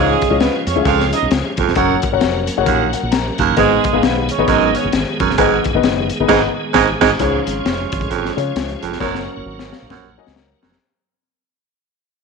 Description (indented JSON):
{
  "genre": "uptempo 1960s-style soul",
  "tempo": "133 BPM",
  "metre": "4/4",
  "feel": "swing 60% on 8ths",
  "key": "unclear",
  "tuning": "A4 = 440 Hz",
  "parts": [
    { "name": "mellow horn section", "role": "second line", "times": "0.0-10.6 s", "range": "F#3 to E#5", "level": "-21 LUFS", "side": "right 12 dB", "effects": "none" },
    { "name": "warm upright piano", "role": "accompaniment", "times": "0.0-10.8 s", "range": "G#2 to A#5", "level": "-20 LUFS", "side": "left 13 dB", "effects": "none" },
    { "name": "tonewheel organ", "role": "sustained chords", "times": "0.0-10.8 s", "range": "D#3 to A#4", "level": "-25 LUFS", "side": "right 1 dB", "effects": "slow rotary speaker, chorus vibrato" },
    { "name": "raspy baritone saxophone", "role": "riff", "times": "0.0-10.8 s", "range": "D#2 to G#2", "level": "-18 LUFS", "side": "right 12 dB", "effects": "none" },
    { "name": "fingered electric bass", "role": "bass", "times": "0.0-10.8 s", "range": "E#1 to C#3", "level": "-23 LUFS", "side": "right 1 dB", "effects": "none" },
    { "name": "crunchy breakbeat drum kit", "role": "drums", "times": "0.2-10.8 s", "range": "crash cymbal, hi-hat, kick drum, snare drum", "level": "-21 LUFS", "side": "left 4 dB", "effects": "none" }
  ],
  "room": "light reverb, studio ambience",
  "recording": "1960s-style stereo with parts hard left and right",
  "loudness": "-14 LUFS",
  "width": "side -4 dB against mid",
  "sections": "0.0-7.2 A section; 7.2-10.8 B section",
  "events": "upright piano fill 2.7-3.6, 9.5-10.8; band accent 6.3-7.2; fade-out 7.2-10.8; drum fill 9.0-10.8",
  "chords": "0.0 C#; 1.8 F#; 3.6 G#m; 7.2 C#; 9.0 F#",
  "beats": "0.40 0.86 1.31 | 1.76 2.22 2.67 3.12 | 3.58 4.03 4.48 4.93 | 5.39 5.84 6.29 6.74 | 7.20 7.65 8.10 8.55 | 9.00 9.45 9.91 10.36"
}